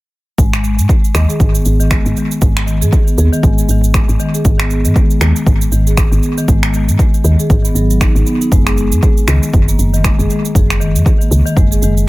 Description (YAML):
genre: afro house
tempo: 118 BPM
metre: 4/4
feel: swing 58% on 16ths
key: G# minor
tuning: A4 = 440 Hz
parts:
  - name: marimba with soft mallets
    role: arpeggios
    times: 0.4-12.0 s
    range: D#3 to G#4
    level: -17 LUFS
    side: left 1 dB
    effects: sidechain pumping, tape echo
  - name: woody FM bass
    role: bass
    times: 0.4-12.1 s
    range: F#1 to G#2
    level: -14 LUFS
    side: equal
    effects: sidechain pumping
  - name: electronic kick drum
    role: drums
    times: 0.4-11.7 s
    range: none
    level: -13 LUFS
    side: equal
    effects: none
  - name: electronic shaker and finger snaps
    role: drums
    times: 0.4-12.1 s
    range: none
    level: -21 LUFS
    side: right 2 dB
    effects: dub echo
room: light reverb, digital ambience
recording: echo-heavy mix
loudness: -10 LUFS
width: side -20 dB against mid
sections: 0.4-12.1 A section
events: none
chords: 0.4 G#5; 8.5 N.C.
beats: | 0.38 0.89 1.40 1.91 | 2.42 2.92 3.43 3.94 | 4.45 4.96 5.47 5.98 | 6.48 6.99 7.50 8.01 | 8.52 9.03 9.54 10.04 | 10.55 11.06 11.57 12.08